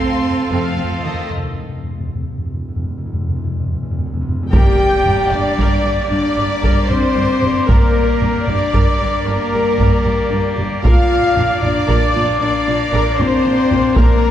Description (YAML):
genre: cinematic, epic orchestral film score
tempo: 76 BPM (dotted quarters)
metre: 12/8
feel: straight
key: G minor from 4.5 s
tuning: A4 = 440 Hz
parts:
  - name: warm symphonic violin section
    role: melody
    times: 0.0-14.3 s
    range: Bb4 to C6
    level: -27 LUFS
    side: left 3 dB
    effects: none
  - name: warm symphonic violin section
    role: second line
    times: 0.0-14.3 s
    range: A4 to G5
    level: -25 LUFS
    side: left 2 dB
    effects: none
  - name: pipe organ, trumpet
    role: sustained chords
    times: 0.0-14.3 s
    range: Bb3 to F5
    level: -25 LUFS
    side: left 1 dB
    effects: none
  - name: warm symphonic cello section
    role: bass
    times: 0.0-14.1 s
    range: G2 to C4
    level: -25 LUFS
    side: right 3 dB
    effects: none
  - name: timpani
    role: percussion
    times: 0.0-5.3 s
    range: F2 to G2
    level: -22 LUFS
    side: equal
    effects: none
  - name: mellow French horn section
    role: sustained chords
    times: 0.2-14.3 s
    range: Bb3 to A4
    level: -19 LUFS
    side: left 4 dB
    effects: none
  - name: rich studio viola section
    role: accompaniment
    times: 0.5-14.3 s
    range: A3 to D5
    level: -26 LUFS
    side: right 1 dB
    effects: none
  - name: rich symphonic double bass section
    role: bass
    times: 0.5-14.1 s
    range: F1 to Bb1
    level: -24 LUFS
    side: right 2 dB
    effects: none
  - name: dark trumpet section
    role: stabs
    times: 4.5-14.3 s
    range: Bb4 to G5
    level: -21 LUFS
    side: right 1 dB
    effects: none
  - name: solo taiko drums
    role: drums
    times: 4.5-14.3 s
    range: none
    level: -17 LUFS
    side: equal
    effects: none
  - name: impact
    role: sound effects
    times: 4.5-7.7 s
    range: none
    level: -31 LUFS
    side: equal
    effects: none
room: wet concert hall reverb, RT60 2.1 s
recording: heard from further back in the room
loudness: -14 LUFS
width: side -11 dB against mid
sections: 0.0-4.5 A section; 4.5-14.3 B section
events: timpani fill 0.0-4.5; break 1.3-4.5; drum fill 3.7-4.5; impact 4.5-7.7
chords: 0.0 F; 4.5 Gm; 10.8 Bb